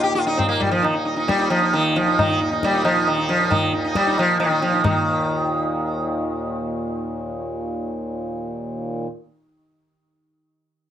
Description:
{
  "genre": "indian classical, Hindustani",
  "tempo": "136 BPM",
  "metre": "4/4",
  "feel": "straight",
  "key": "unclear",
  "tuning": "A4 = 440 Hz",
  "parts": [
    { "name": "sitar", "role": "melody", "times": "0.0-6.6 s", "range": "Eb3 to G4", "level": "-19 LUFS", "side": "right 1 dB", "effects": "analog delay" },
    { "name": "pedal harmonium", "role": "drone", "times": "0.0-9.1 s", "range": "Eb2 to Bb2", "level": "-28 LUFS", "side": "equal", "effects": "none" },
    { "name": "tabla", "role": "percussion", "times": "0.4-5.0 s", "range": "none", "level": "-24 LUFS", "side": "left 2 dB", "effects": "none" }
  ],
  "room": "wet small room reverb, RT60 0.5 s",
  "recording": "cassette tape",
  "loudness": "-19 LUFS",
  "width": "side -10 dB against mid",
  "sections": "0.0-4.8 A section; 4.8-8.3 B section",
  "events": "none",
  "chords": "none",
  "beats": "0.39 0.83 | 1.28 1.73 2.17 2.62 | 3.07 3.51 3.95 4.40 | 4.84 5.28 5.72 6.16 | 6.60 7.04 7.47 7.91"
}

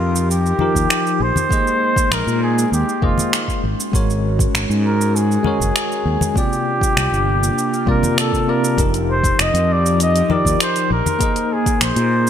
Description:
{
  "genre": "sunset chillout",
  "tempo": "99 BPM",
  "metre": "4/4",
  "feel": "straight",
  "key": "unclear",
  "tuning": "A4 = 440 Hz",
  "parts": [
    { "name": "warm flugelhorn", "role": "melody", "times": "0.0-12.3 s", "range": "F4 to Eb5", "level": "-20 LUFS", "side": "equal", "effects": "digital delay" },
    { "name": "bell-like tine electric piano", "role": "accompaniment", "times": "0.0-12.3 s", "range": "C3 to Eb5", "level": "-23 LUFS", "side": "left 1 dB", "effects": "auto-pan, low-pass filter, digital delay" },
    { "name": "airy breathy pad", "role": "sustained chords", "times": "0.0-12.3 s", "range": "C3 to Bb4", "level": "-25 LUFS", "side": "equal", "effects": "chorus" },
    { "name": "fretless electric bass", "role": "bass", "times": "0.0-12.3 s", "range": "F1 to Bb2", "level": "-19 LUFS", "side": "equal", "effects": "none" },
    { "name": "deep house drum kit", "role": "drums", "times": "0.2-12.3 s", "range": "finger snaps, hi-hat, shaker", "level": "-22 LUFS", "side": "right 1 dB", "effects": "overdrive, gated reverb" },
    { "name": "congas", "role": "percussion", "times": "0.6-11.2 s", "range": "none", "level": "-24 LUFS", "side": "left 2 dB", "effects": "none" },
    { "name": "electronic kick drum", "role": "drums", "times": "0.8-11.8 s", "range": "none", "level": "-20 LUFS", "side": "equal", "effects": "overdrive" }
  ],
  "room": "moderate plate reverb, RT60 3.0 s",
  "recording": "bright 1980s-style digital production",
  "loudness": "-15 LUFS",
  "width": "side -9 dB against mid",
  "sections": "0.0-12.3 A section",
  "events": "none",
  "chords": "0.0 F9sus4; 1.2 Bb9sus4; 3.6 Ab9sus4; 6.4 C9sus4; 8.8 F9sus4; 10.9 Bb9sus4",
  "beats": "0.30 0.90 | 1.51 2.12 2.72 3.33 | 3.93 4.54 5.15 5.75 | 6.36 6.96 7.57 8.18 | 8.78 9.39 9.99 10.60 | 11.21 11.81"
}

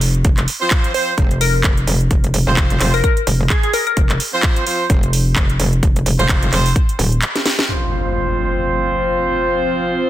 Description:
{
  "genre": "bass house",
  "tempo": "129 BPM",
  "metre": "4/4",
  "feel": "swing 57% on 16ths",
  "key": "unclear",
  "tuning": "A4 = 440 Hz",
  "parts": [
    { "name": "metallic wobble bass", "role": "bass", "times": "0.0-7.2 s", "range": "Eb1 to F1", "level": "-16 LUFS", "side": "equal", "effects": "chorus, tube saturation, sidechain pumping" },
    { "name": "house drum kit", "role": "drums", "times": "0.0-7.7 s", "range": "handclaps, hi-hat, snare drum", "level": "-20 LUFS", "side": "right 1 dB", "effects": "soft clipping on snare" },
    { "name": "electronic kick drum", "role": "drums", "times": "0.2-6.9 s", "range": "none", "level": "-16 LUFS", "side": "equal", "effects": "none" },
    { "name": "brilliant horn section", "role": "stabs", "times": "0.6-10.1 s", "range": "F3 to C5", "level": "-20 LUFS", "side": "right 1 dB", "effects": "sidechain pumping, low-pass filter, dub echo" },
    { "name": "glassy wavetable pluck", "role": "melody", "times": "0.9-3.9 s", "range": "Ab4 to C5", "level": "-20 LUFS", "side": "left 3 dB", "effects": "chorus, dub echo" },
    { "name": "sweeping resonant pad", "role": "sustained chords", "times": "7.7-10.1 s", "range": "F3 to C5", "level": "-25 LUFS", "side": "left 1 dB", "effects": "chorus, vintage 12-bit sampler grit, sidechain pumping" },
    { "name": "impact", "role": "sound effects", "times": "7.7-9.5 s", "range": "none", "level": "-23 LUFS", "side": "equal", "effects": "none" }
  ],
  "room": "light reverb, digital ambience",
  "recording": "dense, heavily limited modern master",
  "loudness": "-14 LUFS",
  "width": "side -13 dB against mid",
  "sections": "0.0-7.7 A section; 7.7-10.1 B section",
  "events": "drum fill 7.3-7.7; impact 7.7-9.5; filter sweep on horn section 7.7-10.1",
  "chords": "0.0 F5",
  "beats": "| 0.25 0.71 1.18 1.64 | 2.11 2.57 3.04 3.50 | 3.97 4.43 4.90 5.36 | 5.83 6.29 6.76 7.22 | 7.69 8.15 8.62 9.08 | 9.55 10.01"
}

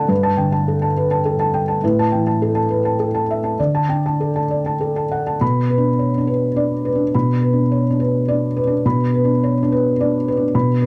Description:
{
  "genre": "neoclassical minimalist piano",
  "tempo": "105 BPM",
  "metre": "3/4",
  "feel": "rubato",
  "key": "unclear",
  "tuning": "A4 = 441 Hz",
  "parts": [
    { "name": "felt-muted upright piano", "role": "solo", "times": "0.0-10.9 s", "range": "G2 to B5", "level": "-18 LUFS", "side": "equal", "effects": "none" }
  ],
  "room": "wet small room reverb, RT60 0.6 s",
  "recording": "dark, warm production",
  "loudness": "-18 LUFS",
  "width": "mono",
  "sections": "0.0-5.4 A section; 5.4-10.9 B section",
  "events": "none",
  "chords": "0.1 Gadd9; 1.8 Asus2; 3.6 D; 5.4 Bm",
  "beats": "| 0.10 0.68 1.25 | 1.82 2.40 2.98 | 3.58 4.20 4.81 | 5.41 5.99 6.56 | 7.14 7.71 8.28 | 8.84 9.41 9.98 | 10.54"
}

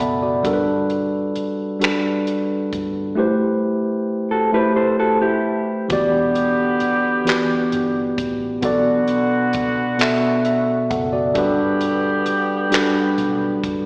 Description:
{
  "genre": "slow six-eight R&B",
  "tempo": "44 BPM (dotted quarters)",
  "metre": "6/8",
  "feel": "straight",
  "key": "E minor",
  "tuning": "A4 = 440 Hz",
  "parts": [
    { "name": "mellow tine electric piano", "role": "accompaniment", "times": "0.0-13.9 s", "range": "B2 to B5", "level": "-18 LUFS", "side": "equal", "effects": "slapback echo" },
    { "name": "vintage muted fingered electric bass", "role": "bass", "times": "0.0-13.9 s", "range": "E1 to B1", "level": "-35 LUFS", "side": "equal", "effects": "none" },
    { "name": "compact cocktail drum kit", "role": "drums", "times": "0.0-13.8 s", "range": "finger snaps, handclaps, hi-hat, kick drum", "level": "-24 LUFS", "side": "equal", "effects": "slapback echo" },
    { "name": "mellow electric guitar", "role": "second line", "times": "4.3-5.9 s", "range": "E4 to C5", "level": "-19 LUFS", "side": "equal", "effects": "slapback echo" },
    { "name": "dark horn section", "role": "stabs", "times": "5.9-13.6 s", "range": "D3 to G4", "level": "-23 LUFS", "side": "equal", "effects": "slapback echo" }
  ],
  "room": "light reverb",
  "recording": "live gig heard through the venue's PA, recital hall reverb, small speaker sound",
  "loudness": "-16 LUFS",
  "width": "side -38 dB against mid",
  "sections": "0.0-5.9 A section; 5.9-13.9 B section",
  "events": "tine electric piano fill 0.0-0.4",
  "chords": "0.4 Gmaj7; 3.2 Am9; 5.9 Em9; 8.6 Bm7; 11.4 Gmaj7",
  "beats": "| 0.45 1.81 | 3.17 4.54 | 5.90 7.27 | 8.63 9.99 | 11.36 12.72"
}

